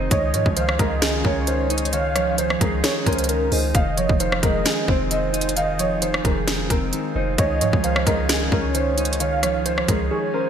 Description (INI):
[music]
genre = hip hop, trap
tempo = 132 BPM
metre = 4/4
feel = half-time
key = unclear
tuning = A4 = 440 Hz
[part]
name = dark concert grand piano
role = melody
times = 0.0-10.5 s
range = Ab4 to F5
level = -26 LUFS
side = right 1 dB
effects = ping-pong delay
[part]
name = mellow electric guitar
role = accompaniment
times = 0.0-10.5 s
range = Eb3 to Eb4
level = -26 LUFS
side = right 1 dB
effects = analog chorus
[part]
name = pedal harmonium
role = sustained chords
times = 0.0-10.5 s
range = Eb3 to Ab4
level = -32 LUFS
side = left 1 dB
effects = none
[part]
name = warm 808-style bass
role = bass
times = 0.0-10.1 s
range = F1 to Ab2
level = -25 LUFS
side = equal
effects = none
[part]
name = warm velvety synth lead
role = second line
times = 0.1-10.5 s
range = Ab4 to F5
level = -27 LUFS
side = right 1 dB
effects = chorus, ping-pong delay
[part]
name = trap drum kit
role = drums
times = 0.1-10.0 s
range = hi-hat, kick drum, rim click, snare drum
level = -22 LUFS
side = equal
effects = gated reverb
[sound]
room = moderate lush hall reverb, RT60 1.8 s, digital ambience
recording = bright 1980s-style digital production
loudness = -18 LUFS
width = side -8 dB against mid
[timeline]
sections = 0.0-10.5 A section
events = drums muted 10.1-10.5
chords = 0.1 Dbadd9; 3.7 Fm7; 7.4 Dbadd9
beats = | 0.11 0.57 1.02 1.48 | 1.93 2.38 2.84 3.29 | 3.75 4.20 4.66 5.11 | 5.57 6.02 6.47 6.93 | 7.38 7.84 8.29 8.75 | 9.20 9.66 10.11